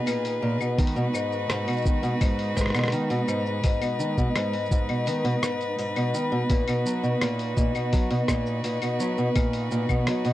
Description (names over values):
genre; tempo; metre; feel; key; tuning
folktronica; 84 BPM; 4/4; straight; unclear; A4 = 436 Hz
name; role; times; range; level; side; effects
vibraphone with medium hard mallets; second line; 0.0-10.3 s; B4 to B5; -31 LUFS; left 6 dB; tape echo
rich string quartet; sustained chords; 0.0-10.3 s; G#3 to B4; -32 LUFS; right 1 dB; none
fingerpicked steel-string acoustic guitar; arpeggios; 0.1-10.3 s; G#2 to F#3; -26 LUFS; right 1 dB; tape echo
lo-fi sampler-style drum kit; drums; 0.1-10.3 s; claves, hi-hat, rim click, shaker; -32 LUFS; left 2 dB; none
electronic kick drum; drums; 0.8-10.0 s; none; -24 LUFS; equal; none
room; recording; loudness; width
little or no reverb; dry, close 1970s-style studio recording; -23 LUFS; side -14 dB against mid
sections
0.0-10.3 A section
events
none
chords
0.0 Bmaj7; 0.8 G#m7; 3.6 G#m; 6.5 Bmaj7